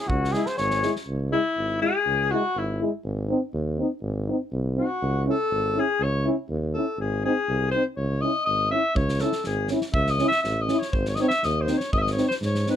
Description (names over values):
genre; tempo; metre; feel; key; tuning
balkan folk, Balkan brass band; 122 BPM; 2/4; straight; C# harmonic minor; A4 = 437 Hz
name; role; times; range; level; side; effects
clear flugelhorn; melody; 0.0-0.9 s; F#4 to C#5; -26 LUFS; left 1 dB; plate reverb
warm alto saxophone; second line; 0.0-12.8 s; C#4 to E5; -25 LUFS; left 3 dB; none
warm tuba; bass; 0.1-12.7 s; G#1 to G#2; -27 LUFS; right 1 dB; none
loose indie drum kit; percussion; 0.1-1.0, 9.0-12.7 s; kick drum, snare drum; -31 LUFS; right 1 dB; none
mellow French horn; accompaniment; 0.3-12.8 s; D#4 to E4; -29 LUFS; left 7 dB; none
warm euphonium; accompaniment; 0.3-12.8 s; G#3 to C#4; -28 LUFS; right 4 dB; none
room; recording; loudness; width
light reverb; none; -22 LUFS; side -10 dB against mid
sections
0.0-1.1 A section; 1.1-12.8 B section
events
alto saxophone solo 1.1-12.8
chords
0.1 C#m; 3.0 G#; 5.0 C#m; 7.0 G#; 8.0 C#m; 10.9 G#